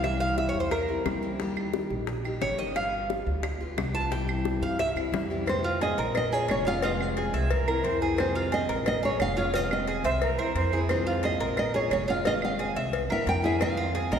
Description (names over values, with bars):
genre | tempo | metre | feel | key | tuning
latin, Cuban son and guajira | 177 BPM | 4/4 | straight | F minor | A4 = 440 Hz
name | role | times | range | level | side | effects
picked steel-string acoustic guitar | accompaniment | 0.0-14.2 s | C3 to G4 | -33 LUFS | left 3 dB | none
Cuban tres | arpeggios | 0.0-14.2 s | F4 to A5 | -30 LUFS | right 1 dB | none
upright bass | bass | 0.0-14.2 s | F1 to G2 | -32 LUFS | equal | none
bongos and cowbell | percussion | 0.0-14.2 s | none | -34 LUFS | left 4 dB | none
claves | percussion | 0.0-13.8 s | none | -41 LUFS | right 4 dB | none
nylon-string guitar | melody | 5.5-14.2 s | C5 to G5 | -29 LUFS | right 2 dB | none
bright reedy jazz flute | second line | 7.3-10.8 s | Ab4 to C5 | -34 LUFS | right 6 dB | none
room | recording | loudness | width
wet church reverb, RT60 2.9 s | recorded in a church or concert hall | -25 LUFS | side -8 dB against mid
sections
0.0-5.5 A section; 5.5-14.2 B section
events
Cuban tres solo 0.0-5.5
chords
0.0 C; 1.4 Eb; 2.8 G7; 4.1 C; 5.5 Fm7; 6.2 Bbm7; 6.8 Fm7; 7.5 C7; 8.2 Fm7; 8.9 Bbm7; 9.5 Fm7; 10.2 C7; 10.9 Fm7; 11.6 Bbm7; 12.2 Fm7; 12.9 C7; 13.6 Fm7